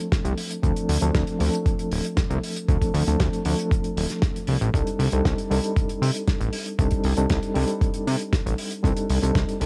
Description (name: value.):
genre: nu-disco, nu disco.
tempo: 117 BPM.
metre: 4/4.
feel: straight.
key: C dorian.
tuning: A4 = 444 Hz.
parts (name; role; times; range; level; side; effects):
mellow reed electric piano; accompaniment; 0.0-9.7 s; F3 to A4; -29 LUFS; equal; fast tremolo, vintage 12-bit sampler grit, sidechain pumping, cassette tape.
damped 70s drum kit; drums; 0.1-9.7 s; hi-hat, snare drum; -33 LUFS; equal; cassette tape.
electronic kick drum; drums; 0.1-9.5 s; none; -26 LUFS; equal; cassette tape.
fat analog bass; bass; 0.2-9.7 s; D1 to C3; -26 LUFS; equal; none.
room: light reverb, small room ambience.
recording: home recording on cassette.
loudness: -24 LUFS.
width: mono.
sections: 0.0-9.7 A section.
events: none.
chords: 0.0 Dm7; 4.7 Cm69.